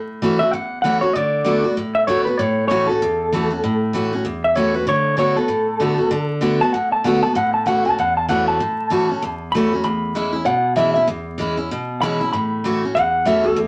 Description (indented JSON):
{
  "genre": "rock",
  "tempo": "193 BPM",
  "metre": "4/4",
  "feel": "swing 60% on 8ths",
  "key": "A major",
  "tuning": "A4 = 440 Hz",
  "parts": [
    { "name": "picked steel-string acoustic guitar", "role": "accompaniment", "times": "0.0-13.7 s", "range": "E2 to F#4", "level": "-22 LUFS", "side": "equal", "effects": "none" },
    { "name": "electric guitar through a small old amp", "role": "melody", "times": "0.4-13.6 s", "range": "A4 to B5", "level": "-21 LUFS", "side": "equal", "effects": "none" }
  ],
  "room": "moderate studio reverb, RT60 0.5 s",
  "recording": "vinyl crackle",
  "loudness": "-19 LUFS",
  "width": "mono",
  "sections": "0.0-13.7 A section",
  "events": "clean electric guitar solo 0.0-13.7",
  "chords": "0.0 A6; 1.1 D6; 2.4 A6; 4.9 D6; 7.4 A6; 9.8 E6; 12.3 A6",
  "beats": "0.21 0.53 0.84 | 1.15 1.46 1.77 2.08 | 2.39 2.70 3.01 3.32 | 3.63 3.94 4.25 4.56 | 4.87 5.18 5.49 5.80 | 6.12 6.43 6.74 7.05 | 7.36 7.67 7.98 8.29 | 8.60 8.91 9.22 9.53 | 9.84 10.15 10.46 10.77 | 11.09 11.40 11.71 12.02 | 12.33 12.64 12.95 13.26 | 13.57"
}